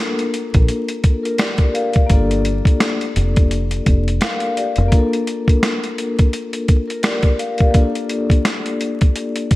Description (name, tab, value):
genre	hip hop, boom-bap hip-hop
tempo	85 BPM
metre	4/4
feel	swing 58% on 16ths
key	G minor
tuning	A4 = 440 Hz
part	vibraphone with soft mallets	accompaniment	0.0-9.6 s	Bb3 to F5	-20 LUFS	left 2 dB	none
part	boom bap sampler-style drum kit	drums	0.2-9.6 s	hi-hat, kick drum, rim click, snare drum	-16 LUFS	equal	gated reverb
part	deep dub fingered electric bass	bass	0.6-4.9 s	F1 to Bb1	-18 LUFS	equal	none
room	light reverb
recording	bright 1980s-style digital production, vinyl crackle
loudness	-15 LUFS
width	side -18 dB against mid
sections	0.0-9.6 A section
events	none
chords	0.0 Gm7; 4.9 Bbmaj7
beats	0.69 1.39 | 2.10 2.81 3.51 4.22 | 4.92 5.63 6.33 7.04 | 7.75 8.45 9.16